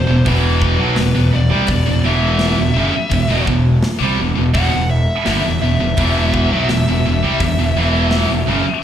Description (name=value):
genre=heavy metal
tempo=84 BPM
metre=4/4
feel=straight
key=E minor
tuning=A4 = 440 Hz
part: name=high-gain lead guitar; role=melody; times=0.0-8.8 s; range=B4 to F#5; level=-23 LUFS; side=left 2 dB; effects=distortion, slapback echo
part: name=high-gain distorted guitar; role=riff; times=0.0-8.7 s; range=E2 to G3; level=-18 LUFS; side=right 7 dB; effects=distortion, slapback echo
part: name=scooped high-gain guitar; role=riff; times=0.0-8.7 s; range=E2 to G3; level=-19 LUFS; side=left 7 dB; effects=distortion, slapback echo
part: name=fuzz fingered electric bass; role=bass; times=0.0-8.7 s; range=E1 to C2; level=-18 LUFS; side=equal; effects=overdrive
part: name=tight metal drum kit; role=drums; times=0.3-8.3 s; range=hi-hat, kick drum, snare drum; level=-24 LUFS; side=equal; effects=none
room=little or no reverb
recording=live gig heard through the venue's PA, club reverb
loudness=-13 LUFS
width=side -10 dB against mid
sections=0.0-8.8 A section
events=none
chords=0.0 Em